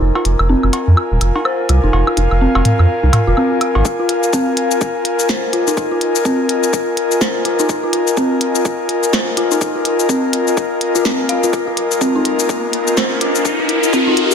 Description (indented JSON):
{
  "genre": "minimal techno",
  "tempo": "125 BPM",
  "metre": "4/4",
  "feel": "swing 59% on 16ths",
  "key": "F minor",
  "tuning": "A4 = 440 Hz",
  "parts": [
    { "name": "saturated sub bass", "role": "bass", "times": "0.0-3.8 s", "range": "Eb1 to F2", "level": "-13 LUFS", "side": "right 1 dB", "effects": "sidechain pumping" },
    { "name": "airy breathy pad", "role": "texture", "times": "0.0-14.3 s", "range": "F4 to Ab5", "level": "-17 LUFS", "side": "left 2 dB", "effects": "chorus, sidechain pumping" },
    { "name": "dark detuned synth bell", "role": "riff", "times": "0.2-14.1 s", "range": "C4 to F5", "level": "-20 LUFS", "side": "equal", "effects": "chorus, sidechain pumping, low-pass filter, ping-pong delay" },
    { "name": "electronic cowbell, woodblock, bongos and toms", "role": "percussion", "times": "0.2-3.8 s", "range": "none", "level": "-19 LUFS", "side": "equal", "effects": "none" },
    { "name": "minimal click drum kit", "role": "drums", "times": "0.3-14.3 s", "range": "cabasa, hi-hat, snare drum", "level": "-20 LUFS", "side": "left 2 dB", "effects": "none" },
    { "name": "electronic kick drum", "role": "drums", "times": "3.9-14.0 s", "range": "none", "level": "-22 LUFS", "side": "right 1 dB", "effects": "high-pass filter on kick" },
    { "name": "riser", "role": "sound effects", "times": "12.1-14.3 s", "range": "none", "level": "-18 LUFS", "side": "left 2 dB", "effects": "none" }
  ],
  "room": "moderate lush hall reverb, RT60 2.0 s",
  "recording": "none",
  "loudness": "-13 LUFS",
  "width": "side -7 dB against mid",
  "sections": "0.0-3.9 A section; 3.9-14.3 B section",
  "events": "build-up 3.9-14.3; riser 12.1-14.3",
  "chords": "0.0 Fm7"
}